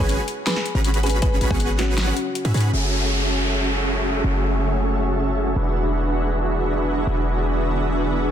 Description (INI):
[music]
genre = future bass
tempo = 159 BPM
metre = 4/4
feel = half-time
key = F# minor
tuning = A4 = 440 Hz
[part]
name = thumb-piano-like synth pluck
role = melody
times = 0.0-2.7 s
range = B3 to B4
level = -27 LUFS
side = left 1 dB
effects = chorus, sidechain pumping, digital delay
[part]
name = dense compressed supersaw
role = riff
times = 0.0-8.3 s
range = C#4 to B5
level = -24 LUFS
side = right 1 dB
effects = sidechain pumping, low-pass filter, ping-pong delay
[part]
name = warm 808-style bass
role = bass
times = 0.0-8.3 s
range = E1 to G#2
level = -23 LUFS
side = equal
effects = sidechain pumping
[part]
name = electronic kick drum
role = drums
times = 0.0-1.6 s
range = none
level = -23 LUFS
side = equal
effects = small room ambience
[part]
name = dubstep drum kit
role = drums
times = 0.1-2.7 s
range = hi-hat, snare drum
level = -26 LUFS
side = left 1 dB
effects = small room ambience
[part]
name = shimmering ambient pad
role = sustained chords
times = 3.7-8.3 s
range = C#3 to F#4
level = -30 LUFS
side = equal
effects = chorus, built-in reverb, sidechain pumping
[part]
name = downlifter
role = sound effects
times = 2.7-5.8 s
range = none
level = -27 LUFS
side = equal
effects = none
[sound]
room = light reverb, digital ambience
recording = dense, heavily limited modern master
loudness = -19 LUFS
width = side -9 dB against mid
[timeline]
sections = 0.0-2.7 A section; 2.7-8.3 B section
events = drop 0.0-2.7; kick drops out 2.0-2.7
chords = 0.0 C#7sus4/G#; 2.7 F#m9; 5.6 E9